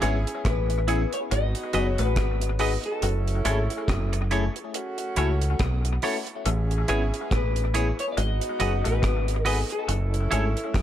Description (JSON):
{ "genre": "lovers rock reggae", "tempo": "70 BPM", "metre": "4/4", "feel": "swing 58% on 16ths", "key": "unclear", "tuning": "A4 = 441 Hz", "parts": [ { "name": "mellow saxophone section", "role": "second line", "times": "0.0-10.8 s", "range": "A3 to G#4", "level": "-35 LUFS", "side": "right 2 dB", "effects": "none" }, { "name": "FM electric piano", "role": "accompaniment", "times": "0.0-10.5 s", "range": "A3 to G#4", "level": "-32 LUFS", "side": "left 4 dB", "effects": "chorus, phaser, tape echo" }, { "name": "clean electric guitar", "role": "riff", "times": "0.0-10.8 s", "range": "F#3 to C#4", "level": "-37 LUFS", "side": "left 7 dB", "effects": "analog chorus, tape echo" }, { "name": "semi-hollow electric guitar", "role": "stabs", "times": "0.0-10.4 s", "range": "E4 to D#5", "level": "-30 LUFS", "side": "right 4 dB", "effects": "none" }, { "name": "deep dub fingered electric bass", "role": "bass", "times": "0.0-10.8 s", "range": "F#1 to C#2", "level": "-25 LUFS", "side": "equal", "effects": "none" }, { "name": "deep reggae drum kit", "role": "drums", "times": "0.0-10.8 s", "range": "hi-hat, kick drum, rim click", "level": "-29 LUFS", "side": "right 1 dB", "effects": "gated reverb, tape echo" }, { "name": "electric guitar through a small old amp", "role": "melody", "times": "0.5-10.8 s", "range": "A4 to D#5", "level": "-32 LUFS", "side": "left 3 dB", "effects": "wide subtle chorus, tape echo" } ], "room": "light reverb", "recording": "none", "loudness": "-23 LUFS", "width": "side -11 dB against mid", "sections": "0.0-10.8 A section", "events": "none", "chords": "0.0 Amaj7; 1.3 G#m7; 3.0 F#m7; 4.7 B9sus4; 6.5 Amaj7; 8.2 G#m7; 9.9 F#m7" }